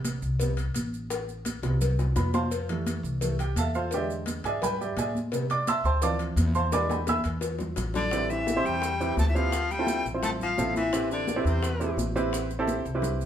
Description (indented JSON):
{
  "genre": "Afro-Cuban jazz",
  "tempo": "171 BPM",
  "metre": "4/4",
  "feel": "straight",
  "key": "A minor",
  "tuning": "A4 = 441 Hz",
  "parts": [
    { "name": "warm baby grand piano", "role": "accompaniment", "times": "0.0-13.3 s", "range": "C3 to E6", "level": "-29 LUFS", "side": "right 3 dB", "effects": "none" },
    { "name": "upright bass", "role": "bass", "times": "0.0-13.3 s", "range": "A1 to A2", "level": "-30 LUFS", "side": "equal", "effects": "none" },
    { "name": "congas", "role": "percussion", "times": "0.0-13.3 s", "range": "none", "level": "-34 LUFS", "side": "equal", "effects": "none" },
    { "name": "cowbell and bongos", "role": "percussion", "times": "0.0-13.1 s", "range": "none", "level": "-36 LUFS", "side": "left 5 dB", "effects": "none" },
    { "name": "maracas", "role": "percussion", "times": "0.1-13.3 s", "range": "none", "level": "-41 LUFS", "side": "right 5 dB", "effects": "none" },
    { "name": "breathy bright alto recorder", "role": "melody", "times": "8.0-12.0 s", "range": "C5 to A5", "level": "-30 LUFS", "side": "left 2 dB", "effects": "none" },
    { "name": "clear baritone saxophone", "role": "second line", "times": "8.0-12.0 s", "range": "C3 to A3", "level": "-32 LUFS", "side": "left 5 dB", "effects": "none" }
  ],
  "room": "moderate large studio reverb, RT60 0.9 s",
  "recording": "band playing live in one room",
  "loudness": "-25 LUFS",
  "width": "side -10 dB against mid",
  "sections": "0.0-8.1 A section; 8.1-13.3 B section",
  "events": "grand piano solo 0.0-8.1; drum fill 1.1-2.5, 6.7-8.1, 13.0",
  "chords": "0.0 Am7; 2.5 Fmaj7; 3.9 E7#9; 5.3 Am7; 6.0 Dm7; 6.7 E7#9; 8.1 Am7; 9.5 Dm7; 10.9 Am7",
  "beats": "0.05 0.41 0.76 | 1.11 1.46 1.81 2.16 | 2.52 2.87 3.22 3.57 | 3.92 4.27 4.62 4.97 | 5.33 5.68 6.03 6.38 | 6.73 7.08 7.43 7.78 | 8.13 8.48 8.83 9.18 | 9.53 9.88 10.23 10.58 | 10.93 11.28 11.63 11.98 | 12.33 12.68 13.03"
}